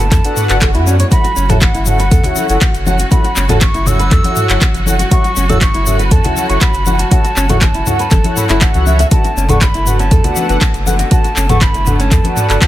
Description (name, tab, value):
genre	afro house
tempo	120 BPM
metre	4/4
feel	straight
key	F# minor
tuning	A4 = 439 Hz
part	concert flute	melody	0.0-12.7 s	F#5 to E6	-21 LUFS	equal	tape echo
part	bright studio string section	sustained chords	0.0-12.7 s	D3 to F#4	-24 LUFS	right 2 dB	sidechain pumping
part	warm sub bass	bass	0.0-12.6 s	F#1 to F#2	-15 LUFS	equal	sidechain pumping
part	afro-pop drum kit	drums	0.0-12.7 s	handclaps, hi-hat, toms	-18 LUFS	right 1 dB	overdrive
part	flamenco guitar	arpeggios	0.1-12.7 s	C#4 to F#5	-22 LUFS	equal	sidechain pumping, tape echo
part	electronic kick drum	drums	0.1-12.7 s	none	-12 LUFS	equal	none
part	egg shaker	percussion	0.1-12.7 s	none	-25 LUFS	left 6 dB	none
part	swell	sound effects	0.4-1.1 s	none	-25 LUFS	equal	none
part	mellow synth brass	stabs	0.2-12.6 s	D4 to F#5	-20 LUFS	left 1 dB	chorus, sidechain pumping, tape echo
part	congas	percussion	1.2-12.7 s	none	-21 LUFS	left 2 dB	none
room	small room ambience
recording	none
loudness	-10 LUFS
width	side -14 dB against mid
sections	0.0-12.7 A section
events	swell 0.4-1.1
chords	0.0 Bm7/F#; 1.1 F#m7; 9.1 Bm7/F#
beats	0.12 0.62 | 1.12 1.62 2.12 2.62 | 3.12 3.62 4.12 4.62 | 5.12 5.62 6.12 6.62 | 7.12 7.62 8.12 8.62 | 9.12 9.62 10.12 10.62 | 11.12 11.62 12.12 12.62